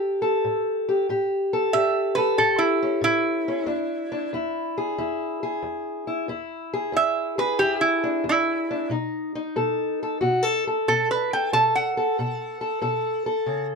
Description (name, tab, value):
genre	acoustic country blues, solo or duo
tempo	92 BPM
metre	4/4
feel	swing 68% on 8ths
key	unclear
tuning	A4 = 440 Hz
part	fingerpicked steel-string acoustic guitar	accompaniment	0.0-13.8 s	E2 to A4	-24 LUFS	left 2 dB	none
part	lap resonator guitar	melody	1.7-13.7 s	E4 to A5	-22 LUFS	right 2 dB	none
room	light reverb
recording	close, detailed microphones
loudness	-21 LUFS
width	side -4 dB against mid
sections	0.0-13.8 A section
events	none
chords	0.0 A7; 3.7 E7; 8.9 B7